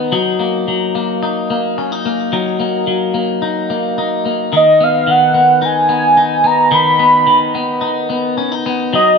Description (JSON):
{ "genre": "dream pop", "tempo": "109 BPM", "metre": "4/4", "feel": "straight", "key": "unclear", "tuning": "A4 = 441 Hz", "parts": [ { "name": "clean electric guitar", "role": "arpeggios", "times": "0.0-9.2 s", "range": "Eb3 to Eb4", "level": "-16 LUFS", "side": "left 3 dB", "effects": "wide subtle chorus, ping-pong delay" }, { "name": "warm velvety synth lead", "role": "melody", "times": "4.6-9.2 s", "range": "Eb5 to Cb6", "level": "-10 LUFS", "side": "right 1 dB", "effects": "chorus, ping-pong delay" } ], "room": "moderate concert hall reverb, RT60 2.3 s", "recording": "none", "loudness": "-12 LUFS", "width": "side -5 dB against mid", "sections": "0.0-9.2 A section", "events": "none", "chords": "0.1 Ebm; 4.5 Abm/Eb" }